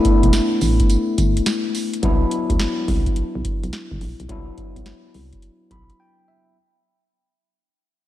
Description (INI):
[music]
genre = R&B, new jack swing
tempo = 106 BPM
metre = 4/4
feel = swing 66% on 16ths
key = unclear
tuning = A4 = 441 Hz
[part]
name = tine electric piano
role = accompaniment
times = 0.0-6.6 s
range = F#3 to B5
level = -22 LUFS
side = left 3 dB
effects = wide subtle chorus, slapback echo
[part]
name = booming analog drum machine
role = drums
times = 0.0-6.0 s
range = hi-hat, kick drum, snare drum, tambourine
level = -21 LUFS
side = equal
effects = none
[part]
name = solid FM bass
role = bass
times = 0.2-5.9 s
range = E1 to D2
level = -23 LUFS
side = equal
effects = none
[sound]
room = light reverb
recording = none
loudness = -17 LUFS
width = side -14 dB against mid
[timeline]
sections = 0.0-6.6 A section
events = fade-out 0.0-6.6; tine electric piano fill 5.4-6.6; break 6.0-6.6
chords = 0.0 G6 (rootless); 2.0 Cmaj9#11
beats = 0.33 0.90 1.46 | 2.03 2.60 3.16 3.73 | 4.29 4.86 5.43 5.99